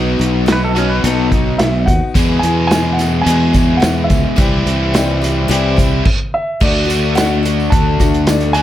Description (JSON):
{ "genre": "folk rock and heartland rock", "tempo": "108 BPM", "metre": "4/4", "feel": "straight", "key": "unclear", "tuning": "A4 = 445 Hz", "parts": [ { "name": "dark concert grand piano", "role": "melody", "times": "0.0-8.6 s", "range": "D5 to A5", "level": "-20 LUFS", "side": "right 1 dB", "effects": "none" }, { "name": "picked steel-string acoustic guitar", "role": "accompaniment", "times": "0.0-8.6 s", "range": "E2 to G#4", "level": "-21 LUFS", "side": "left 7 dB", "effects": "none" }, { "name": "overdriven electric guitar", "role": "riff", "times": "0.0-8.6 s", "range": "E2 to F#4", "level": "-18 LUFS", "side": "equal", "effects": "none" }, { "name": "fingered electric bass", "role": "bass", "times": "0.0-8.6 s", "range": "B1 to E2", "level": "-16 LUFS", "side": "equal", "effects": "none" }, { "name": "vintage drum kit", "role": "drums", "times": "0.2-8.6 s", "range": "crash cymbal, hi-hat, kick drum, snare drum", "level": "-16 LUFS", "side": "equal", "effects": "none" }, { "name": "pedal steel guitar", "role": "second line", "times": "0.5-1.6 s", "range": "C#4 to B4", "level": "-21 LUFS", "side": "right 4 dB", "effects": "none" }, { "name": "tambourine", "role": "percussion", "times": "2.2-8.6 s", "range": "none", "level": "-33 LUFS", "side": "right 7 dB", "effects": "none" } ], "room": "little or no reverb", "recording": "none", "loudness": "-12 LUFS", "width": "side -12 dB against mid", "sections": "0.0-6.6 A section; 6.6-8.6 B section", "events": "stop 6.1-6.6", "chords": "0.0 B; 2.2 E; 4.4 C; 6.6 D" }